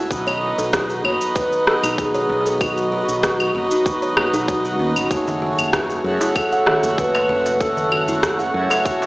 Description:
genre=organic downtempo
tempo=96 BPM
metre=4/4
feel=straight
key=unclear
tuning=A4 = 439 Hz
part: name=pedal harmonium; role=accompaniment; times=0.0-9.1 s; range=A3 to G#5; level=-23 LUFS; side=right 1 dB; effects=sidechain pumping, tape echo
part: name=warm analog pad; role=sustained chords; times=0.0-9.1 s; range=C#3 to F#5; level=-30 LUFS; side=equal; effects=none
part: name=buzzing kalimba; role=arpeggios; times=0.0-9.0 s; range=C#4 to F#5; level=-25 LUFS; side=right 1 dB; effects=tape echo
part: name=mellow fretless electric bass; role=bass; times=0.1-8.7 s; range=F#1 to F#2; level=-29 LUFS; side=equal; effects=sidechain pumping
part: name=electronic cabasa, claves and rim click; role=drums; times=0.1-9.1 s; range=none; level=-22 LUFS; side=equal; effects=none
part: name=electronic kick drum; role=drums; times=0.1-9.0 s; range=none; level=-26 LUFS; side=equal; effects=none
part: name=mellow hollow bass bansuri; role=melody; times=1.0-8.5 s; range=F#4 to C#5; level=-23 LUFS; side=equal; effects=digital delay
part: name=drifting glass-harmonics texture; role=texture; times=5.7-9.1 s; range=F#4 to F#5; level=-31 LUFS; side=equal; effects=chorus, built-in reverb
part: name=darbuka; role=percussion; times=5.3-9.1 s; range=none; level=-31 LUFS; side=right 1 dB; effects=none
room=moderate huge ambient reverb, RT60 4.0 s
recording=played on a big sound system in a bare room, large studio reverb, small speaker sound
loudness=-17 LUFS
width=side -21 dB against mid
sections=0.0-9.1 A section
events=none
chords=0.1 B; 5.1 F#madd9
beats=| 0.11 0.73 1.36 1.98 | 2.61 3.23 3.86 4.48 | 5.11 5.73 6.36 6.98 | 7.61 8.23 8.86

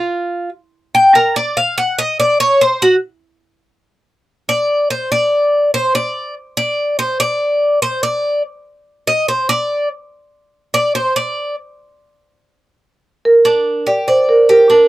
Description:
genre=latin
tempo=144 BPM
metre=4/4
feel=straight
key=G minor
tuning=A4 = 439 Hz
part: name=Cuban tres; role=arpeggios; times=0.0-14.9 s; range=D4 to G5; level=-13 LUFS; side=equal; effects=none
part: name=marimba with medium mallets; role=melody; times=13.3-14.9 s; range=Bb4 to D5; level=-9 LUFS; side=right 2 dB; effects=none
room=moderate booth ambience, RT60 0.2 s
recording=dry, close 1970s-style studio recording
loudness=-13 LUFS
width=side -16 dB against mid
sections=0.0-13.4 A section; 13.4-14.9 B section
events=Cuban tres solo 0.0-13.4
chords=0.0 N.C.; 13.4 Gm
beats=| 0.11 0.53 0.94 1.36 | 1.78 2.19 2.61 3.03 | 3.44 3.86 4.28 4.70 | 5.11 5.53 5.95 6.36 | 6.78 7.20 7.61 8.03 | 8.45 8.86 9.28 9.70 | 10.11 10.53 10.95 11.36 | 11.78 12.20 12.61 13.03 | 13.45 13.86 14.28 14.70

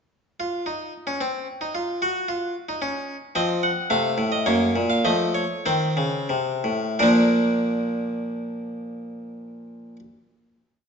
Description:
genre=classical, baroque-style 3-part fugue for harpsichord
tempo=84-112 BPM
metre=3/4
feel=straight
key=unclear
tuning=A4 = 439 Hz
part: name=harpsichord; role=solo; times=0.4-10.0 s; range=Gb2 to Gb5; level=-22 LUFS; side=equal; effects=none
room=wet recital hall reverb, RT60 1.5 s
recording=nothing above 7.6 kHz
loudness=-21 LUFS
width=side -6 dB against mid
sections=0.1-7.0 exposition; 7.0-10.9 final chord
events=slowing down 2.6-7.0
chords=0.1 N.C.; 3.4 F7; 4.5 Gb; 5.0 F7; 7.0 Bb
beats=| 0.12 0.67 1.21 | 1.75 2.29 2.82 | 3.36 3.90 4.46 | 5.05 5.66 6.30 | 6.99 7.71 8.42 | 9.13 9.84

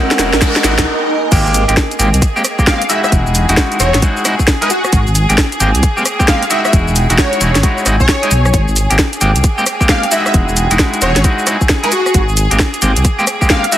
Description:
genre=UK garage, two-step garage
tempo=133 BPM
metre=4/4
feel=swing 64% on 16ths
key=Ab major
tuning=A4 = 441 Hz
part: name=bright studio violin section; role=sustained chords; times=0.0-13.8 s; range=Ab4 to Bb4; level=-24 LUFS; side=equal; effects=sidechain pumping
part: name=clean electric guitar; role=stabs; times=0.0-13.8 s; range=G#3 to G#4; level=-17 LUFS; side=equal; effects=spring reverb, tape echo
part: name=riser and noise sweep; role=sound effects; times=0.0-1.3 s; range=none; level=-19 LUFS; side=equal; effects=none
part: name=granular cloud pad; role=texture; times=0.0-13.7 s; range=Bb4 to G#5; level=-24 LUFS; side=right 3 dB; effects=built-in reverb, sidechain pumping
part: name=garage drum kit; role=drums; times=0.1-13.8 s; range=crash cymbal, hi-hat, rim click, shaker, snare drum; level=-16 LUFS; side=equal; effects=overdrive
part: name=dark detuned saw bass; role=bass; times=0.2-13.0 s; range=E1 to C2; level=-14 LUFS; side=equal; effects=none
part: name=electronic kick drum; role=drums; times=0.4-13.6 s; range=none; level=-14 LUFS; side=equal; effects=overdrive
part: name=plucky unison lead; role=melody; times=2.7-13.8 s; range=F#4 to F5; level=-18 LUFS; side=equal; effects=ensemble chorus, tape echo
room=light reverb, digital ambience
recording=heavily compressed radio sound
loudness=-10 LUFS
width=side -12 dB against mid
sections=0.0-1.3 A section; 1.3-13.8 B section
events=build-up 0.0-1.3; drum fill 0.0-0.9; riser 0.0-0.9; noise sweep 0.0-1.3; break 0.9-1.3; drop 1.3-13.8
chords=0.0 Emaj9; 1.3 Abmaj9; 2.9 Emaj9; 4.9 Abmaj9; 6.5 Emaj9; 8.5 Abmaj9; 10.1 Emaj9; 12.1 Abmaj9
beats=0.42 0.87 | 1.32 1.77 2.22 2.67 | 3.12 3.57 4.03 4.48 | 4.93 5.38 5.83 6.28 | 6.73 7.18 7.63 8.09 | 8.54 8.99 9.44 9.89 | 10.34 10.79 11.24 11.69 | 12.14 12.60 13.05 13.50

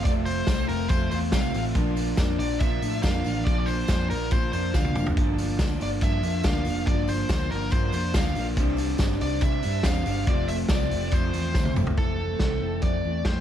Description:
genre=jangly indie pop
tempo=141 BPM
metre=4/4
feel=straight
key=F major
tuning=A4 = 442 Hz
part: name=nasal lead guitar with a parked wah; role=melody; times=0.0-13.4 s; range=A4 to F5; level=-32 LUFS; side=left 1 dB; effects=overdrive, digital delay
part: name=electric guitar through a small old amp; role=accompaniment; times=0.0-13.4 s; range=F2 to D4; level=-32 LUFS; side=right 5 dB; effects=none
part: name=electric guitar through a small old amp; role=arpeggios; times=0.0-13.4 s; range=E3 to F4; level=-31 LUFS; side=left 4 dB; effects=wide subtle chorus, digital delay
part: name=picked electric bass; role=bass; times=0.0-13.4 s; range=F1 to C3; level=-29 LUFS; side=equal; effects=none
part: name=loose indie drum kit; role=drums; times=0.1-13.4 s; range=hi-hat, kick drum, ride cymbal, snare drum, toms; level=-26 LUFS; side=equal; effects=none
part: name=tambourine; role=percussion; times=0.1-11.9 s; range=none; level=-47 LUFS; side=left 8 dB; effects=none
room=little or no reverb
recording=dark, warm production, vinyl crackle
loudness=-22 LUFS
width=side -10 dB against mid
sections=0.0-12.0 A section; 12.0-13.4 B section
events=drum fill 4.7-5.2, 11.6-12.0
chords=0.0 F; 1.8 Bb; 5.2 Gm7; 8.6 Csus2; 10.3 F; 12.0 Fmaj7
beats=| 0.06 0.48 0.91 1.33 | 1.76 2.19 2.62 3.04 | 3.47 3.89 4.32 4.75 | 5.17 5.60 6.02 6.45 | 6.87 7.30 7.72 8.15 | 8.57 9.00 9.43 9.85 | 10.28 10.70 11.13 11.55 | 11.98 12.40 12.83 13.26

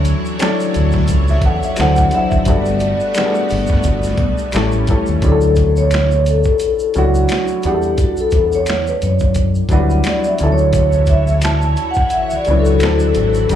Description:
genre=R&B, neo-soul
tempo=87 BPM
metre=4/4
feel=swing 57% on 16ths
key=D major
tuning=A4 = 440 Hz
part: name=warm upright piano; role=accompaniment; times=0.0-13.6 s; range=E3 to F#5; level=-20 LUFS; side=left 1 dB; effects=plate reverb, slapback echo
part: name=string machine, violins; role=sustained chords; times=0.0-5.2, 10.7-13.6 s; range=E3 to C#5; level=-24 LUFS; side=left 1 dB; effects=ensemble chorus, plate reverb
part: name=deep dub fingered electric bass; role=bass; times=0.0-13.6 s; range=G1 to G2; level=-16 LUFS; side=equal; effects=none
part: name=boom bap sampler-style drum kit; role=drums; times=0.0-13.6 s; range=finger snaps, hi-hat, kick drum, snare drum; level=-19 LUFS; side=equal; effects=none
part: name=tube shaker and finger snaps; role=percussion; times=0.0-13.6 s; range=none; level=-33 LUFS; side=left 1 dB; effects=none
part: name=vibraphone with soft mallets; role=melody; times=1.8-13.6 s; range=F#4 to A5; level=-18 LUFS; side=left 1 dB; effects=plate reverb, slapback echo
room=light reverb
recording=live gig heard through the venue's PA, club reverb, lossy compression artefacts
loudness=-13 LUFS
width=side -10 dB against mid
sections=0.0-5.2 A section; 5.2-13.6 B section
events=vibraphone solo 5.2-13.6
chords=0.0 Dmaj9; 1.8 D9; 2.5 Gmaj9; 4.5 A7; 5.2 Dmaj9; 7.6 Em11; 10.4 Dmaj9; 12.8 D9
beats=0.40 1.08 1.77 | 2.46 3.15 3.84 4.53 | 5.22 5.91 6.60 7.29 | 7.98 8.67 9.36 10.05 | 10.74 11.43 12.12 12.81 | 13.50

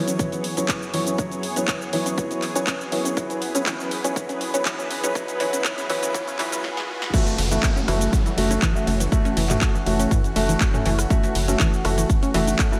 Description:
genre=progressive house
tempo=121 BPM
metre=4/4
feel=straight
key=F# minor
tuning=A4 = 440 Hz
part: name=lush unison pad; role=sustained chords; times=0.0-12.8 s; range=F#2 to C#5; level=-32 LUFS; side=equal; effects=chorus, sidechain pumping
part: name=unison pluck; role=arpeggios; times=0.0-12.8 s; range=E3 to C#4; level=-32 LUFS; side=equal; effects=sidechain pumping, delay
part: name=felt-muted upright piano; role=stabs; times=0.0-12.8 s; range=F#3 to E5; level=-28 LUFS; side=equal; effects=sidechain pumping, low-pass filter, delay
part: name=riser and downlifter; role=sound effects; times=4.2-11.1 s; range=none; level=-37 LUFS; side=equal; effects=none
part: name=house drum kit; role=drums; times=0.1-12.8 s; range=crash cymbal, handclaps, hi-hat, ride cymbal, shaker, snare drum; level=-30 LUFS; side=equal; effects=none
part: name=electronic kick drum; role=drums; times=0.2-12.7 s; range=none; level=-24 LUFS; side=equal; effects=none
part: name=tight sequencer bass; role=bass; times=7.4-12.5 s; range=F#1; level=-26 LUFS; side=equal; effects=sidechain pumping
part: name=punchy analog drum machine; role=percussion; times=7.9-12.6 s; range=congas, rim click, toms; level=-33 LUFS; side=equal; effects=none
room=moderate recital hall reverb, RT60 1.7 s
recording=high-pass filter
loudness=-22 LUFS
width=mono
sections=0.0-7.1 A section; 7.1-12.8 B section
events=build-up 0.0-7.1; filter sweep on synth pluck 0.0-7.1; filter sweep on felt piano 0.0-7.1; drum fill 6.6-7.1; drop 7.1-12.8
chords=0.0 C#m7/F#; 7.1 F#m7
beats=0.19 0.69 | 1.19 1.68 2.18 2.67 | 3.17 3.67 4.16 4.66 | 5.15 5.65 6.14 6.64 | 7.14 7.63 8.13 8.62 | 9.12 9.62 10.11 10.61 | 11.10 11.60 12.10 12.59

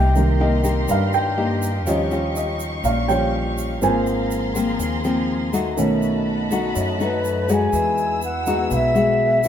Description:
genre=bossa nova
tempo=123 BPM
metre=4/4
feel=straight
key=unclear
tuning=A4 = 439 Hz
part: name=dark baby grand piano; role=accompaniment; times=0.0-9.5 s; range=Eb3 to Ab5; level=-23 LUFS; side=right 2 dB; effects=none
part: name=nylon-string guitar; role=accompaniment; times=0.0-9.5 s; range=F#2 to G4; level=-23 LUFS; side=left 3 dB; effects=none
part: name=dark symphonic violin section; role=sustained chords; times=0.0-9.5 s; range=B3 to E6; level=-30 LUFS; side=left 1 dB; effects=none
part: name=upright bass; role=bass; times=0.0-9.5 s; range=Ab1 to G2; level=-25 LUFS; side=equal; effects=none
part: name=tube shaker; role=percussion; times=0.2-9.5 s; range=none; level=-36 LUFS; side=right 6 dB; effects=none
part: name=mellow hollow bansuri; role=melody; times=7.0-9.5 s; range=B4 to Ab5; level=-20 LUFS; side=equal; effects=none
room=moderate echo chamber reverb, RT60 1.3 s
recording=minimal, uncompressed stereo recording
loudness=-18 LUFS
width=side -9 dB against mid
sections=0.0-7.7 A section; 7.7-9.5 B section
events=grand piano solo 0.0-7.7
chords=0.0 Cm7; 1.9 Eb9; 3.8 Ab69; 5.8 B7; 7.7 Emaj9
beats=0.40 0.89 1.38 | 1.87 2.35 2.84 3.33 | 3.82 4.31 4.80 5.29 | 5.78 6.26 6.75 7.24 | 7.73 8.22 8.71 9.19

